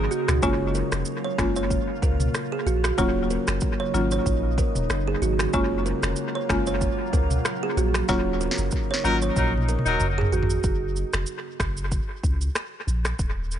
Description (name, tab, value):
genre	afrobeats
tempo	94 BPM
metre	4/4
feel	swing 55% on 16ths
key	F# major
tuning	A4 = 440 Hz
part	glassy FM pad	sustained chords	0.0-10.6 s	C#3 to E#4	-31 LUFS	left 1 dB	ensemble chorus, built-in reverb
part	kalimba	riff	0.0-10.4 s	F#4 to C#5	-29 LUFS	right 6 dB	dub echo
part	punchy sub bass	bass	0.0-13.6 s	D#1 to C#2	-26 LUFS	equal	none
part	afro-pop drum kit	drums	0.1-13.6 s	finger snaps, kick drum, rim click, shaker, snare drum, toms	-27 LUFS	equal	dub echo
part	buzzing marimba with medium mallets	accompaniment	0.4-9.3 s	F#3 to E#4	-28 LUFS	left 2 dB	dub echo
part	warm horn section	second line	9.0-10.1 s	F#3 to A#4	-28 LUFS	left 2 dB	dub echo
room	small room ambience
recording	echo-heavy mix, nothing above 10.8 kHz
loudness	-22 LUFS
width	side -10 dB against mid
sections	0.0-10.6 A section; 10.6-13.6 B section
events	drum fill 8.1-10.6; band accent 8.1-10.6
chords	0.4 F#maj7; 3.0 D#m7; 5.5 F#maj7; 8.1 D#m7; 10.6 F#